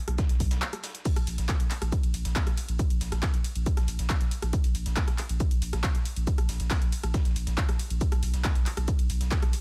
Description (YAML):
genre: driving peak-time techno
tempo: 138 BPM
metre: 4/4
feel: straight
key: unclear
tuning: A4 = 439 Hz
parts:
  - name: saturated sub bass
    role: bass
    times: 0.1-9.5 s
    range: Bb1 to Cb2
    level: -33 LUFS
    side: equal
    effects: tube saturation, sidechain pumping, low-pass filter
  - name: punchy analog drum machine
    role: drums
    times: 0.1-9.6 s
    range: crash cymbal, handclaps, hi-hat, ride cymbal, rim click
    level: -37 LUFS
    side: equal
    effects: overdrive
  - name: dusty soul sampler-style drum kit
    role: drums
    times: 0.2-9.6 s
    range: hi-hat, shaker, snare drum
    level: -46 LUFS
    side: equal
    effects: overdrive, high-pass filter on snare, high-pass filter on perc, high-pass filter on hats, high-pass filter on room
  - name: electronic kick drum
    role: drums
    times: 0.2-9.4 s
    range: none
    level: -29 LUFS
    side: equal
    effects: none
room: digital ambience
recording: none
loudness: -28 LUFS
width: mono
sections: 0.0-9.6 A section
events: break 0.6-1.1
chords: none